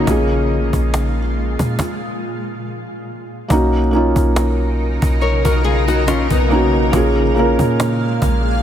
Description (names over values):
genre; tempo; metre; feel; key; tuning
contemporary R&B; 70 BPM; 4/4; swing 54% on 16ths; unclear; A4 = 440 Hz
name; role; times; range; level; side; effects
felt-muted upright piano; accompaniment; 0.0-8.6 s; A3 to A#4; -18 LUFS; right 1 dB; none
granular cloud pad; sustained chords; 0.0-8.6 s; A#2 to E#5; -23 LUFS; right 1 dB; built-in reverb
nylon-string guitar; arpeggios; 0.0, 5.2-6.9 s; B3 to C#5; -22 LUFS; left 6 dB; ping-pong delay
clean 808-style bass; bass; 0.0-8.6 s; A#1 to A#2; -18 LUFS; equal; none
cajon; drums; 0.1-8.4 s; none; -23 LUFS; equal; none
room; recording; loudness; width
light reverb, studio ambience; none; -14 LUFS; side -10 dB against mid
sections
0.0-3.5 A section; 3.5-8.6 B section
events
stop 1.8-3.5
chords
0.1 A#m7; 1.8 N.C.; 3.5 Bmaj9; 6.9 G#sus4